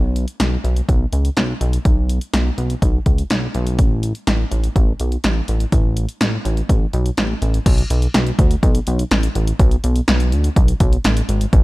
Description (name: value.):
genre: synth-pop.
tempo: 124 BPM.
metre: 4/4.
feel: straight.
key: unclear.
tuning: A4 = 440 Hz.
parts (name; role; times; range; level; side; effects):
chorused synth bass; bass; 0.0-11.6 s; G#1 to D2; -18 LUFS; equal; none.
punchy analog drum machine; drums; 0.2-11.6 s; crash cymbal, hi-hat, kick drum, snare drum; -17 LUFS; equal; none.
room: little or no reverb.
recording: none.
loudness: -15 LUFS.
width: side -20 dB against mid.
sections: 0.0-7.7 A section; 7.7-11.6 B section.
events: none.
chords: none.